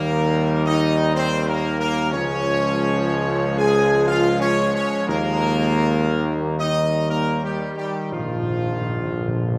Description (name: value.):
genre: classical.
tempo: 60 BPM.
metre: 3/4.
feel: straight.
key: Eb major.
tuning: A4 = 440 Hz.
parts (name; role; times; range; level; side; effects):
clear trumpet section; melody; 0.0-9.6 s; F4 to Ab5; -28 LUFS; equal; none.
clear trombone section; sustained chords; 0.0-9.6 s; D3 to Ab3; -29 LUFS; equal; none.
mellow French horn section; sustained chords; 0.0-9.6 s; F3 to Ab4; -26 LUFS; equal; none.
clear tuba; bass; 0.0-9.6 s; Bb1 to Eb2; -26 LUFS; equal; none.
timpani; percussion; 0.0-0.6, 8.1-9.6 s; Bb2 to Eb3; -30 LUFS; equal; none.
room: wet concert hall reverb, RT60 1.7 s.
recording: none.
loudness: -21 LUFS.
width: mono.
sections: 0.0-9.6 A section.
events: timpani fill 8.1-9.6.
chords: 0.0 Eb; 2.1 Db; 5.1 Eb; 8.1 Bb.